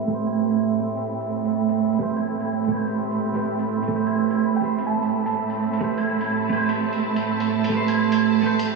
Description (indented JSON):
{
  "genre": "future garage",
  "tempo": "126 BPM",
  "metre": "4/4",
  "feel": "swing 66% on 16ths",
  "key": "A minor",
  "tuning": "A4 = 440 Hz",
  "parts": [
    { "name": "clean electric guitar", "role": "accompaniment", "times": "0.0-8.6 s", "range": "A3 to C5", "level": "-25 LUFS", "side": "right 6 dB", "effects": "wide subtle chorus, low-pass filter, tape echo" },
    { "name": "bright studio string section", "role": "sustained chords", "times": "0.0-8.8 s", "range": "A2 to B5", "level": "-22 LUFS", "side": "right 6 dB", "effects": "none" },
    { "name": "electronic hi-hat and claves", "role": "drums", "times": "0.0-8.7 s", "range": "none", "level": "-34 LUFS", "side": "equal", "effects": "low-pass filter on hats, low-pass filter on snare, low-pass filter on perc, low-pass filter on room" },
    { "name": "drifting glass-harmonics texture", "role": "texture", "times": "0.0-8.8 s", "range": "E5", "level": "-35 LUFS", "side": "right 1 dB", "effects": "chorus, built-in reverb" },
    { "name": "thumb-piano-like synth pluck", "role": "melody", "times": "4.6-5.9 s", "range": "G5 to A5", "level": "-31 LUFS", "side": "right 2 dB", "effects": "chorus, tape echo" }
  ],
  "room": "wet church reverb, RT60 3.3 s",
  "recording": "dreamy mix soaked in reverb, vinyl crackle, low-pass filter, small room ambience",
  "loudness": "-20 LUFS",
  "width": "side -2 dB against mid",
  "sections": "0.0-8.8 A section",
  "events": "filter sweep on drum 0.0-8.8; filter sweep on clean electric guitar 0.0-8.8; filter sweep 0.0-8.8",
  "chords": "0.0 Am9"
}